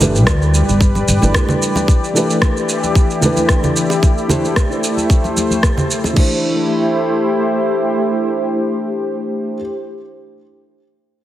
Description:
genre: organic downtempo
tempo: 112 BPM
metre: 4/4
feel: swing 54% on 16ths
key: A minor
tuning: A4 = 445 Hz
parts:
  - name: felt-muted upright piano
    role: accompaniment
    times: 0.0-9.6 s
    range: E3 to C5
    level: -21 LUFS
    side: right 1 dB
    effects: sidechain pumping, digital delay
  - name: warm analog pad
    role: sustained chords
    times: 0.0-9.8 s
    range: E3 to D5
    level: -18 LUFS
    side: left 1 dB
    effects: chorus, tremolo, sidechain pumping
  - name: upright bass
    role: bass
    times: 0.0-1.3 s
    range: G1 to D2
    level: -14 LUFS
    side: equal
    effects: none
  - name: electronic shaker and rim click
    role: drums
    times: 0.0-6.1 s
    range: none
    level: -21 LUFS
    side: right 1 dB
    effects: none
  - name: bongos and congas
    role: percussion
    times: 0.0-6.1 s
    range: none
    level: -22 LUFS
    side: right 1 dB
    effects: none
  - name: organic electronic drum kit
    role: drums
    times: 0.3-6.3 s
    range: crash cymbal, kick drum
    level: -14 LUFS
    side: equal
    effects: none
room: moderate lush hall reverb, RT60 1.8 s, studio ambience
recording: heavily compressed radio sound, multiband compression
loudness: -13 LUFS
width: side -13 dB against mid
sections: 0.0-6.2 A section; 6.2-10.5 B section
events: none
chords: 0.0 G; 1.9 Em7; 4.0 Am7

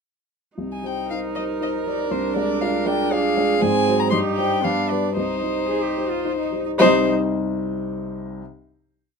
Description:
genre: quick classical-period movement for piano quartet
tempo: 109-120 BPM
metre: 3/4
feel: straight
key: C minor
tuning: A4 = 440 Hz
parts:
  - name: dark baby grand piano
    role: accompaniment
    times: 0.6-8.4 s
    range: C2 to Eb5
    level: -23 LUFS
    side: left 2 dB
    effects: none
  - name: warm viola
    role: accompaniment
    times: 0.6-7.1 s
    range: B3 to Eb4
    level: -26 LUFS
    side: right 6 dB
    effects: none
  - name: warm violin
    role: melody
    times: 0.7-7.1 s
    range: C5 to C6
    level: -24 LUFS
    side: left 4 dB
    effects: none
  - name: warm cello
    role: second line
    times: 1.1-7.1 s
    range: G3 to Bb4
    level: -26 LUFS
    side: right 8 dB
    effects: none
room: light reverb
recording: minimal, uncompressed stereo recording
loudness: -19 LUFS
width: side -5 dB against mid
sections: 0.6-6.8 A section; 6.8-8.4 final chord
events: slowing down 2.9-6.8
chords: 0.6 Cm; 2.1 Dm7b5/C; 3.6 Ab7; 4.1 Cm/G; 4.6 G7; 5.2 Cm

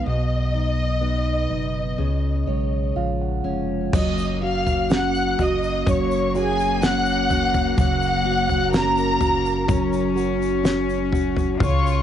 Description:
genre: pop ballad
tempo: 62 BPM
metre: 4/4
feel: straight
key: F# major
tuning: A4 = 439 Hz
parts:
  - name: warm studio violin section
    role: melody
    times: 0.0-12.0 s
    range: G#4 to F#6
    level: -24 LUFS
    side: left 1 dB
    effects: cassette tape
  - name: mellow tine electric piano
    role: accompaniment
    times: 0.0-12.0 s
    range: B2 to F#5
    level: -25 LUFS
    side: right 8 dB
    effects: phaser, cassette tape
  - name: fingerpicked steel-string acoustic guitar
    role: arpeggios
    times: 0.0-12.0 s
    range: B2 to C#5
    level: -28 LUFS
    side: left 8 dB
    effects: cassette tape, tape echo
  - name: saturated sub bass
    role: bass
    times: 0.0-12.0 s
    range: E#1 to C#2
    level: -27 LUFS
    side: equal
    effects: none
  - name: bright chamber cello section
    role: second line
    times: 3.9-12.0 s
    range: A#3 to E#4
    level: -28 LUFS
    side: left 10 dB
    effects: cassette tape
  - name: damped 70s drum kit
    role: drums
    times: 3.9-11.8 s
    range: crash cymbal, kick drum, snare drum, toms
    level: -23 LUFS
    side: equal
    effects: none
  - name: egg shaker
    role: percussion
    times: 3.9-12.0 s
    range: none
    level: -46 LUFS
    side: right 12 dB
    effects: none
room: studio reverb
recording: home recording on cassette, nothing above 10.5 kHz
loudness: -19 LUFS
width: side -10 dB against mid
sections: 0.0-3.9 A section; 3.9-12.0 B section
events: tine electric piano fill 2.0-3.9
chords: 0.1 B; 2.0 C#; 3.9 F#

